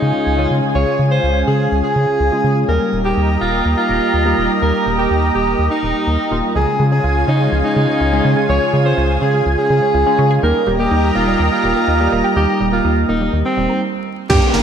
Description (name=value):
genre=italo disco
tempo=124 BPM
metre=4/4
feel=straight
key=unclear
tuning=A4 = 440 Hz
part: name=warm alto saxophone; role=melody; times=0.0-14.6 s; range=C4 to Db5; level=-18 LUFS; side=right 1 dB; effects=ping-pong delay, shimmer reverb
part: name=lush unison pad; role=sustained chords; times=0.0-14.6 s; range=Bb3 to D6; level=-20 LUFS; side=equal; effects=chorus, shimmer reverb
part: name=chorused polysynth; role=stabs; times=0.0-14.6 s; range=G2 to Ab4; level=-20 LUFS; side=equal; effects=vintage 12-bit sampler grit
part: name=round analog bass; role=bass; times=0.0-14.6 s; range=Eb1 to Db3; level=-18 LUFS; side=equal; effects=tube saturation
part: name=analog pluck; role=arpeggios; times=6.6-14.6 s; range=Eb3 to Db5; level=-25 LUFS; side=right 3 dB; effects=chorus, phaser, ping-pong delay, shimmer reverb
part: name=detuned 8-bit digital drum machine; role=drums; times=14.3-14.6 s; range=crash cymbal, hi-hat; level=-23 LUFS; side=left 2 dB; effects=studio reverb
part: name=electronic kick drum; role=drums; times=14.3-14.4 s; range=none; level=-15 LUFS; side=equal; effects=overdrive, studio reverb
part: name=downlifter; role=sound effects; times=14.3-14.6 s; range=none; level=-19 LUFS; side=equal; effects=none
room=wet lush hall reverb, RT60 1.9 s, digital ambience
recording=bright 1980s-style digital production, vinyl crackle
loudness=-13 LUFS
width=side -8 dB against mid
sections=0.0-14.3 A section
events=filter sweep on analog synth pad 0.0-14.3; stop 13.8-14.3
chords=0.0 Db; 2.7 Eb; 6.6 Db; 10.4 Eb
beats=0.27 | 0.75 1.23 1.72 2.20 | 2.69 3.17 3.65 4.14 | 4.62 5.11 5.59 6.07 | 6.56 7.04 7.52 8.01 | 8.49 8.97 9.46 9.94 | 10.43 10.91 11.39 11.88 | 12.36 12.85 13.33 13.81 | 14.30